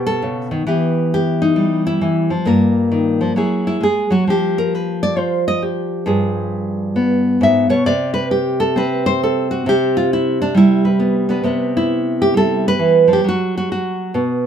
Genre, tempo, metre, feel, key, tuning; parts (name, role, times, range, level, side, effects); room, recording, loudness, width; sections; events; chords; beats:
solo jazz; 134 BPM; 4/4; swing 65% on 8ths; C major; A4 = 440 Hz
nylon-string guitar; solo; 0.0-14.5 s; G2 to E5; -14 LUFS; equal
moderate studio ambience, RT60 0.5 s; band playing live in one room; -14 LUFS; side -8 dB against mid
0.0-11.4 A section; 11.4-14.5 B section
nylon-string guitar solo 0.0-11.4
0.0 B7; 0.7 Em; 2.5 Gm7; 3.4 F#9; 4.3 Fsus2; 6.0 G7b9; 7.8 Csus2; 11.4 Cmaj9; 13.2 N.C.
0.20 | 0.65 1.10 1.55 2.00 | 2.45 2.90 3.35 3.80 | 4.25 4.70 5.15 5.60 | 6.05 6.50 6.95 7.40 | 7.85 8.29 8.74 9.19 | 9.64 10.09 10.54 10.99 | 11.44 11.89 12.34 12.78 | 13.23 13.68 14.13